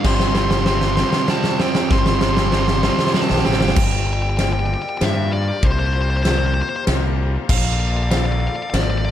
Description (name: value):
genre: post-rock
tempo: 97 BPM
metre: 3/4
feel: straight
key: unclear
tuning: A4 = 443 Hz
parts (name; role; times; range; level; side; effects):
- nasal lead guitar with a parked wah; melody; 0.0-9.1 s; C5 to C6; -24 LUFS; left 3 dB; overdrive, analog delay
- sweeping resonant pad; sustained chords; 0.0-9.1 s; Bb3 to G5; -32 LUFS; left 5 dB; chorus
- electric guitar through a small old amp; arpeggios; 0.0-3.8 s; G3 to F4; -30 LUFS; left 7 dB; analog delay
- fuzz guitar; riff; 0.0-3.8 s; G2 to C4; -22 LUFS; right 9 dB; distortion
- fuzz fingered electric bass; bass; 0.0-9.1 s; G1 to G2; -20 LUFS; equal; overdrive
- huge arena drum kit; drums; 0.0-8.9 s; crash cymbal, kick drum, ride cymbal, snare drum; -20 LUFS; equal; none
room: studio ambience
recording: dark, warm production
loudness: -16 LUFS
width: side -11 dB against mid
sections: 0.0-3.8 A section; 3.8-9.1 B section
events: build-up 0.0-3.8; drum fill 0.0-3.8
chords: 0.0 Csus4/G; 3.8 Gm7; 5.6 C7sus4; 7.5 Bbmaj7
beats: | 0.05 0.67 1.29 | 1.91 2.53 3.15 | 3.77 4.39 5.01 | 5.63 6.25 6.87 | 7.49 8.11 8.73